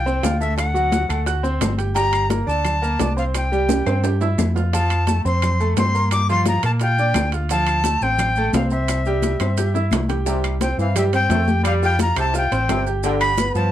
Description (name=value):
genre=latin, salsa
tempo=173 BPM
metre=4/4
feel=straight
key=F major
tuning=A4 = 440 Hz
part: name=breathy bright jazz flute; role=melody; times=0.0-13.7 s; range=E5 to D6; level=-22 LUFS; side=left 2 dB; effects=none
part: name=fingered electric bass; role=bass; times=0.0-13.7 s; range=G1 to Bb2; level=-21 LUFS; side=equal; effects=none
part: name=clear baby grand piano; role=accompaniment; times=0.1-13.7 s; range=F3 to G6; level=-24 LUFS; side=right 1 dB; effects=none
part: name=congas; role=percussion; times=0.1-13.7 s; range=none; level=-27 LUFS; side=left 2 dB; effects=none
part: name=maracas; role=percussion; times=0.1-13.7 s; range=none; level=-34 LUFS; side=right 9 dB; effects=none
part: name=bongos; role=percussion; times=0.2-13.7 s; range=none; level=-30 LUFS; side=left 7 dB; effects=none
part: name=timbales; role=percussion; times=0.2-13.6 s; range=none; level=-28 LUFS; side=right 8 dB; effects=none
part: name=claves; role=percussion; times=0.6-13.4 s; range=none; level=-34 LUFS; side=left 5 dB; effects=none
part: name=mellow trombone section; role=second line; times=10.3-13.7 s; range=C3 to A3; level=-25 LUFS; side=equal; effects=none
room=moderate studio ambience, RT60 0.5 s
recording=none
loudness=-17 LUFS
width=side -12 dB against mid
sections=0.0-10.3 A section; 10.3-13.7 B section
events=drum fill 3.7-4.7, 9.4-10.3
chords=0.0 Fsus2; 0.6 D7; 2.0 Gm; 3.3 C; 4.7 F; 6.1 Gm7; 7.5 Dm7; 8.9 C; 11.7 Fsus2; 13.0 G7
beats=0.24 | 0.58 0.93 1.27 1.62 | 1.96 2.31 2.65 3.00 | 3.35 3.69 4.04 4.38 | 4.73 5.08 5.42 5.77 | 6.12 6.46 6.81 7.15 | 7.50 7.85 8.19 8.54 | 8.88 9.23 9.58 9.92 | 10.27 10.61 10.96 11.31 | 11.65 12.00 12.34 12.69 | 13.04 13.38